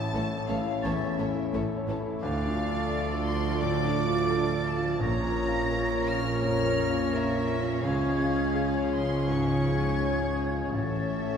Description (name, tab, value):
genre	cinematic, emotional film score for orchestra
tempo	85 BPM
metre	4/4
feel	rubato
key	unclear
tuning	A4 = 440 Hz
part	warm studio violin section	melody	0.0-11.4 s	Db5 to F6	-37 LUFS	left 3 dB	none
part	felt-muted upright piano	accompaniment	0.0-11.4 s	A1 to D5	-33 LUFS	left 2 dB	none
part	warm French horn section	sustained chords	0.0-11.4 s	Ab3 to D4	-33 LUFS	left 4 dB	none
part	dark chamber viola section	accompaniment	0.1-11.4 s	E3 to F4	-33 LUFS	right 3 dB	none
part	rich symphonic cello section	bass	0.1-11.4 s	A2 to D3	-33 LUFS	right 2 dB	none
part	rich symphonic double bass section	bass	0.1-11.4 s	A1 to D2	-34 LUFS	right 2 dB	none
part	warm symphonic violin section	second line	0.2-11.4 s	Ab4 to D5	-38 LUFS	left 2 dB	none
part	concert flute	second line	0.8-11.4 s	Ab6 to Bb6	-37 LUFS	equal	none
part	warm oboe	second line	0.8-11.4 s	Db5 to D5	-39 LUFS	right 1 dB	none
room	wet concert hall reverb, RT60 2.0 s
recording	heard from further back in the room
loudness	-25 LUFS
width	side -7 dB against mid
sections	0.0-11.4 A section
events	none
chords	0.0 A; 2.2 Dm; 5.0 Bbm; 7.8 Db; 10.7 A